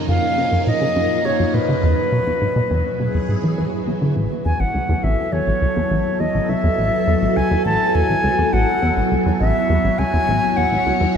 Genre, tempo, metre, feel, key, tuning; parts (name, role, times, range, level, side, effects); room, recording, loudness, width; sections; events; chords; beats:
ambient, sequencer-driven space music; 103 BPM; 4/4; straight; A major from 4.2 s; A4 = 440 Hz
phased string machine; sustained chords; 0.0-11.2 s; Gb2 to C#5; -22 LUFS; equal; ensemble chorus, phaser
wind-like tuned noise texture; texture; 0.0-4.2 s; Db4 to Db5; -37 LUFS; right 2 dB
concert flute; melody; 0.1-11.2 s; Cb5 to A5; -21 LUFS; left 1 dB; analog delay
plucky analog bass; riff; 0.1-11.2 s; A1 to E3; -20 LUFS; equal; lush chorus, analog delay
wet cathedral reverb, RT60 5.3 s; in a vast, echoing space; -16 LUFS; side -7 dB against mid
0.0-4.2 A section; 4.2-11.2 B section
0.0 Gbmaj7; 1.8 E; 4.2 A6
0.09 0.67 1.25 | 1.83 2.42 3.00 3.58 | 4.16 4.75 5.33 5.91 | 6.49 7.08 7.66 8.24 | 8.82 9.40 9.99 10.57 | 11.15